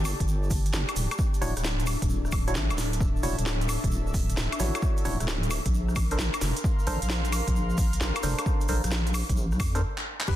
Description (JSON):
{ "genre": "UK garage, two-step garage", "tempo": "132 BPM", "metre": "4/4", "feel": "swing 67% on 16ths", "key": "unclear", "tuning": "A4 = 440 Hz", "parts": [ { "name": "deep soft wobble bass", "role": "bass", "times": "0.0-9.8 s", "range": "D1 to F2", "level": "-28 LUFS", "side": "equal", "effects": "chorus" }, { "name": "egg shaker", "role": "percussion", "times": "0.0-10.4 s", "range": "none", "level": "-41 LUFS", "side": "right 3 dB", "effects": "none" }, { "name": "airy breathy pad", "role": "texture", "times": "0.0-10.4 s", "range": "D4 to C6", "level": "-37 LUFS", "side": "left 2 dB", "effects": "chorus, sidechain pumping" }, { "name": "garage drum kit", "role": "drums", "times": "0.1-10.4 s", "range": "crash cymbal, handclaps, hi-hat, rim click, snare drum, woodblock", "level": "-32 LUFS", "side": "equal", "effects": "none" }, { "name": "electronic kick drum", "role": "drums", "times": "0.2-10.4 s", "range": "none", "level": "-28 LUFS", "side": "equal", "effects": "none" }, { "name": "percussive organ stab", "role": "stabs", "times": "1.4-9.8 s", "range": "D4 to C#5", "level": "-35 LUFS", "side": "equal", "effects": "chorus, dub echo" }, { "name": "Celtic harp", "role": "melody", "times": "10.3-10.4 s", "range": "G4 to B4", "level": "-31 LUFS", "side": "left 5 dB", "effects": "none" }, { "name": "impact", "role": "sound effects", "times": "10.3-10.4 s", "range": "none", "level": "-25 LUFS", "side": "equal", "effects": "none" } ], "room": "little or no reverb", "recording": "dense, heavily limited modern master", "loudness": "-24 LUFS", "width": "side -13 dB against mid", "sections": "0.0-10.3 A section", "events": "break 9.8-10.3; drum fill 9.9-10.3; band accent 10.2", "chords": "0.0 Gsus2; 1.2 Dmaj9; 5.7 Bbmaj9", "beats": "0.28 0.73 | 1.19 1.64 2.10 2.55 | 3.01 3.46 3.92 4.37 | 4.83 5.28 5.73 6.19 | 6.64 7.10 7.55 8.01 | 8.46 8.92 9.37 9.82 | 10.28" }